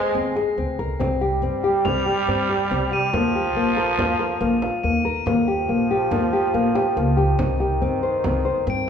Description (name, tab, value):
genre	contemporary instrumental, chamber music in an uneven meter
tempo	141 BPM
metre	5/4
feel	straight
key	C minor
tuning	A4 = 440 Hz
part	growling trombone	second line	0.0-8.9 s	Eb3 to Ab3	-26 LUFS	right 3 dB	none
part	nylon-string guitar	arpeggios	0.0-8.9 s	Bb3 to C5	-21 LUFS	left 2 dB	none
part	upright bass	bass	0.1-8.9 s	Bb1 to G2	-27 LUFS	equal	none
part	frame drum	percussion	0.4-8.4 s	none	-31 LUFS	right 1 dB	none
part	crotales	texture	1.8-5.4, 8.7-8.9 s	D7 to F7	-30 LUFS	left 4 dB	none
room	wet recital hall reverb, RT60 1.8 s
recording	minimal, uncompressed stereo recording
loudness	-19 LUFS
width	side -7 dB against mid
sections	0.0-8.9 A section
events	none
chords	0.0 Ab; 1.0 C5; 3.1 Ebsus2; 5.3 Eb7; 7.4 Cmadd9